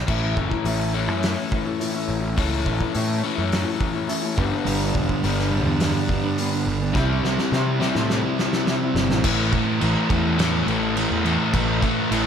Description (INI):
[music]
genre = quiet-loud alternative rock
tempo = 105 BPM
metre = 4/4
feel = straight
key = unclear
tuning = A4 = 441 Hz
[part]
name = fingerpicked steel-string acoustic guitar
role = arpeggios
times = 0.0-9.2 s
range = G2 to E4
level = -28 LUFS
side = equal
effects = digital delay
[part]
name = fuzz picked electric bass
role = bass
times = 0.0-12.2 s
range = E1 to C3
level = -25 LUFS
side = equal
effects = overdrive
[part]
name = raw garage guitar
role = riff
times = 0.1-12.3 s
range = G2 to C4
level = -25 LUFS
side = left 11 dB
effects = overdrive
[part]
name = loose indie drum kit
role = drums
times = 0.1-12.2 s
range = crash cymbal, hi-hat, kick drum, snare drum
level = -26 LUFS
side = equal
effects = none
[part]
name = thick fuzz guitar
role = riff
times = 4.6-12.3 s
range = G2 to C4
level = -25 LUFS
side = right 9 dB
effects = distortion
[sound]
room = light reverb, studio ambience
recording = none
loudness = -20 LUFS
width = side -8 dB against mid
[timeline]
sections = 0.1-9.2 A section; 9.2-12.3 B section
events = drum fill 7.0-9.2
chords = 0.1 A; 4.4 G; 7.0 C; 9.2 A5